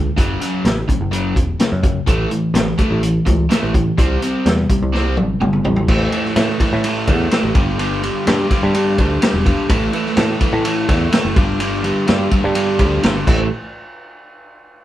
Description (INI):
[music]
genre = classic rock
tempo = 126 BPM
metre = 4/4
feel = straight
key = unclear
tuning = A4 = 440 Hz
[part]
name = overdriven electric guitar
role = riff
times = 0.0-13.5 s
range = F#2 to C4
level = -19 LUFS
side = equal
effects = none
[part]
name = picked electric bass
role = bass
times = 0.0-13.5 s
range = E1 to A2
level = -20 LUFS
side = equal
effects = none
[part]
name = vintage drum kit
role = drums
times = 0.2-13.4 s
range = crash cymbal, hi-hat, kick drum, ride cymbal, snare drum, toms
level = -18 LUFS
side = equal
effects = none
[sound]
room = moderate studio reverb, RT60 0.8 s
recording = band playing live in one room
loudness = -14 LUFS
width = side -13 dB against mid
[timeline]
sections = 0.0-5.9 A section; 5.9-13.5 B section; 13.5-14.8 C section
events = drum fill 4.9-5.9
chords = 0.2 F#5; 2.1 A5; 4.0 C5; 5.9 A5; 7.6 G5; 9.7 A5; 11.4 G5; 13.3 A5; 13.5 N.C.